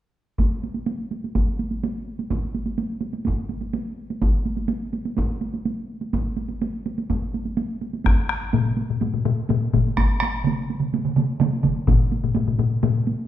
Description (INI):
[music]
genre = japanese traditional, taiko drum ensemble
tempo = 125 BPM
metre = 4/4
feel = straight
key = none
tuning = none
[part]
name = solo taiko drums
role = percussion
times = 0.4-13.3 s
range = none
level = -27 LUFS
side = right 4 dB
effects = none
[part]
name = taiko ensemble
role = percussion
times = 0.4-12.0 s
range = none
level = -24 LUFS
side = equal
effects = none
[part]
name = solo taiko drums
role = percussion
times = 8.1-12.9 s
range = none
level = -22 LUFS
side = left 5 dB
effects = none
[part]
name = solo taiko drums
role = percussion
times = 10.0-11.7 s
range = none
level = -23 LUFS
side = right 4 dB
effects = none
[sound]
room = wet recital hall reverb, RT60 1.4 s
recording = recorded in a church or concert hall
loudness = -21 LUFS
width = side -12 dB against mid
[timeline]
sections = 0.4-8.1 A section; 8.1-13.3 B section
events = none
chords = none